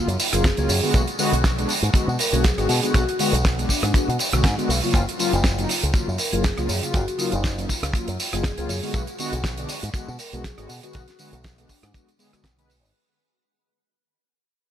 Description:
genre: nu-disco, nu disco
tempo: 120 BPM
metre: 4/4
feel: swing 55% on 16ths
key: unclear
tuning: A4 = 440 Hz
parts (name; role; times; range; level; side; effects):
- mellow synth brass; accompaniment; 0.0-12.7 s; C#3 to B4; -27 LUFS; left 2 dB; chorus, tape echo
- fingered electric bass with an envelope filter; bass; 0.1-12.9 s; F#1 to B2; -25 LUFS; equal; none
- damped 70s drum kit; drums; 0.1-12.9 s; hi-hat, rim click, snare drum, tambourine; -26 LUFS; right 2 dB; studio reverb
- vibraphone with medium mallets; melody; 0.3-11.9 s; D4 to A#4; -31 LUFS; left 1 dB; analog delay
- kick drum; drums; 0.4-12.6 s; none; -21 LUFS; equal; studio reverb
room: light reverb, studio ambience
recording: none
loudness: -20 LUFS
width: side -10 dB against mid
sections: 0.0-12.9 A section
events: drop 0.0-12.9; fade-out 4.9-12.9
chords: 0.0 F#maj7; 0.9 Bm6; 4.9 F#maj7; 8.9 Bm6

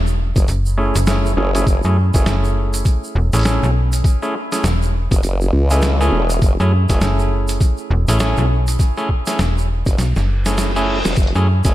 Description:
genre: glitch hop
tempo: 101 BPM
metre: 4/4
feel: swing 60% on 16ths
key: F# minor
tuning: A4 = 440 Hz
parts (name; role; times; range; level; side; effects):
- slap-like FM bass; bass; 0.0-11.6 s; E1 to F#2; -16 LUFS; equal; tube saturation
- tube shaker; percussion; 0.1-11.7 s; none; -31 LUFS; right 4 dB; none
- formant-sweep wobble bass; bass; 0.4-11.7 s; E1 to C#2; -17 LUFS; equal; chorus, tube saturation
- boom bap sampler-style drum kit; drums; 0.4-11.7 s; hi-hat, snare drum; -24 LUFS; equal; none
- electronic kick drum; drums; 0.4-11.7 s; none; -15 LUFS; equal; overdrive
- overdriven clav; stabs; 0.8-11.7 s; A3 to G#4; -22 LUFS; equal; sidechain pumping, low-pass filter, tape echo
- reverse cymbal; sound effects; 10.3-11.2 s; none; -28 LUFS; left 2 dB; none
room: light reverb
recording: none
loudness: -14 LUFS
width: side -15 dB against mid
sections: 0.0-11.7 A section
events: filter sweep on clav 0.0-11.7; drum fill 10.0-11.2; reverse cymbal 10.3-11.2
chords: 0.0 F#m9

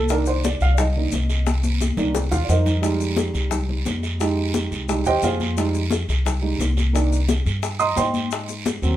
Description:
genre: Afro-Cuban jazz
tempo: 175 BPM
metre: 4/4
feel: straight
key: C minor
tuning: A4 = 440 Hz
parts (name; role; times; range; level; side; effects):
- dark baby grand piano; accompaniment; 0.0-9.0 s; Eb3 to Eb6; -23 LUFS; right 4 dB; none
- upright bass; bass; 0.0-9.0 s; C2 to Ab2; -22 LUFS; equal; none
- bongos; percussion; 0.1-9.0 s; none; -30 LUFS; left 6 dB; none
- congas; percussion; 0.1-8.8 s; none; -27 LUFS; left 3 dB; none
- guiro; percussion; 0.1-9.0 s; none; -33 LUFS; right 6 dB; none
- maracas; percussion; 0.1-9.0 s; none; -36 LUFS; left 7 dB; none
room: moderate studio reverb, RT60 0.5 s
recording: band playing live in one room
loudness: -19 LUFS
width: side -12 dB against mid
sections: 0.0-9.0 A section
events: grand piano solo 0.0-9.0; drum fill 1.5-2.8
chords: 0.0 Cm7; 2.8 Fm9; 6.9 Cm7; 8.3 Ab7

